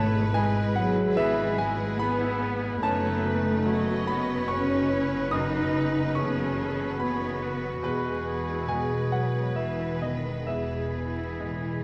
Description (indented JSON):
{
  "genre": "cinematic, emotional film score for orchestra",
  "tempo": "72 BPM",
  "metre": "3/4",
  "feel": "rubato",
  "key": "unclear",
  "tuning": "A4 = 439 Hz",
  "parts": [
    { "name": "clear studio violin section", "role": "melody", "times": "0.0-11.8 s", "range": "B4", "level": "-41 LUFS", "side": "equal", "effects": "none" },
    { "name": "bright clarinet", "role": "second line", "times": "0.0-11.8 s", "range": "D#4 to G#4", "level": "-40 LUFS", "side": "equal", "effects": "none" },
    { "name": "rich studio violin section", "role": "second line", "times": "0.0-11.8 s", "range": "F#4 to D#5", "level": "-41 LUFS", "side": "equal", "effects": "none" },
    { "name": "warm oboe", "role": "second line", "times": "0.0-11.8 s", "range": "G#4 to C#5", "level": "-41 LUFS", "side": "equal", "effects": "none" },
    { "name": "bright grand piano", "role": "accompaniment", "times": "0.0-11.8 s", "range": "E2 to D#6", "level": "-34 LUFS", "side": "equal", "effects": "none" },
    { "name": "rich studio viola section", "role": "accompaniment", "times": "0.0-11.8 s", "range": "D#3 to E4", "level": "-40 LUFS", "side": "equal", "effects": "none" },
    { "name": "mellow French horn section", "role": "sustained chords", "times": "0.0-11.8 s", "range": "B2 to D#4", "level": "-36 LUFS", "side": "equal", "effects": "none" },
    { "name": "concert harp", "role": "arpeggios", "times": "0.0-11.8 s", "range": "E2 to B3", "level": "-38 LUFS", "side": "equal", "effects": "none" },
    { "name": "rich studio cello section", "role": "bass", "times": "0.0-11.8 s", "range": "B2 to D#4", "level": "-34 LUFS", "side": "equal", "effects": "none" },
    { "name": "warm studio double bass section", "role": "bass", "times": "0.0-11.8 s", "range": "E1 to G#1", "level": "-34 LUFS", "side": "equal", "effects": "none" }
  ],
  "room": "moderate scoring stage reverb, RT60 1.6 s",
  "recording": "worn, warbling old tape, cassette tape, vinyl crackle, warbly pitch drift",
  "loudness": "-27 LUFS",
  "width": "mono",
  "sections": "0.0-11.8 A section",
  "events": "none",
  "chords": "0.0 E/G#; 2.8 B/F#; 7.8 E",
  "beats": "| 0.34 1.16 2.00 | 2.83 3.66 4.49 | 5.32 6.16 7.00 | 7.83 8.68 9.56 | 10.46 11.40"
}